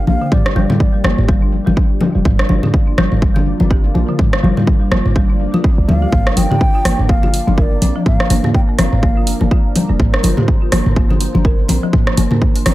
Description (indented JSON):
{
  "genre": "afro house",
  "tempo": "124 BPM",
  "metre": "4/4",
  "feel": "swing 58% on 16ths",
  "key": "G minor pentatonic",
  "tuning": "A4 = 439 Hz",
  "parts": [
    { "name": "mellow bansuri", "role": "melody", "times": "0.0-1.2, 5.9-9.7 s", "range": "D5 to G5", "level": "-24 LUFS", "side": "equal", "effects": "tape echo" },
    { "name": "warm analog pad", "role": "sustained chords", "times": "0.0-12.7 s", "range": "F3 to D5", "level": "-26 LUFS", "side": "right 2 dB", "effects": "chorus, sidechain pumping" },
    { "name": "warm 808-style bass", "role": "bass", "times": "0.0-12.7 s", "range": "F1 to D2", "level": "-17 LUFS", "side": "equal", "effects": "sidechain pumping" },
    { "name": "folk marimba with medium hard mallets", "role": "arpeggios", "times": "0.1-12.7 s", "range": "D3 to Bb4", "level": "-22 LUFS", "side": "left 1 dB", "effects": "sidechain pumping, tape echo" },
    { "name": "congas", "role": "percussion", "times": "0.1-12.7 s", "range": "none", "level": "-19 LUFS", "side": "left 2 dB", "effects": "analog delay" },
    { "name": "electronic kick drum", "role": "drums", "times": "0.3-12.5 s", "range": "none", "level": "-14 LUFS", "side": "equal", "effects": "overdrive" },
    { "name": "house drum kit", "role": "drums", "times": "0.3-12.7 s", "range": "hi-hat, rim click, toms", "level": "-19 LUFS", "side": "right 1 dB", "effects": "overdrive" }
  ],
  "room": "light reverb",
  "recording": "echo-heavy mix",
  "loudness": "-12 LUFS",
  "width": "side -16 dB against mid",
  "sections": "0.0-12.7 A section",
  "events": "none",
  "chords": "0.0 Gm7"
}